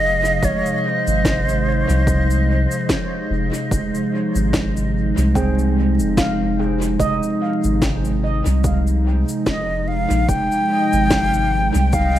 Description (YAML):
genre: ambient dub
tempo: 73 BPM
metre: 4/4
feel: swing 56% on 16ths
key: F minor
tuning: A4 = 440 Hz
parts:
  - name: breathy concert flute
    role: melody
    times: 0.0-3.3, 9.5-12.2 s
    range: C5 to G5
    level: -22 LUFS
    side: equal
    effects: dub echo
  - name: warbly tape-like pad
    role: sustained chords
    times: 0.0-12.2 s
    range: C3 to Ab4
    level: -22 LUFS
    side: equal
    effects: chorus, built-in reverb
  - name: soft dub sub bass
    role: bass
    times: 0.0-12.2 s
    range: F1 to C2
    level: -20 LUFS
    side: equal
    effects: none
  - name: electronic cabasa and snare drum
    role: drums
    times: 0.2-12.2 s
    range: none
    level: -25 LUFS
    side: left 1 dB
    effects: overdrive, studio reverb, dub echo
  - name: electronic kick drum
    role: drums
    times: 0.4-12.1 s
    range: none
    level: -24 LUFS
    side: equal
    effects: studio reverb
  - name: handpan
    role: arpeggios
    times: 5.4-10.3 s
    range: C4 to G5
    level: -26 LUFS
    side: right 3 dB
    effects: dub echo
room: light reverb, digital ambience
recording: echo-heavy mix, vinyl crackle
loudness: -16 LUFS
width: side -12 dB against mid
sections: 0.0-12.2 A section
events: filter sweep on handpan 0.0-12.2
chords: 0.0 Fm7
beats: | 0.43 1.25 2.07 2.89 | 3.71 4.54 5.36 6.18 | 7.00 7.82 8.65 9.47 | 10.29 11.11 11.93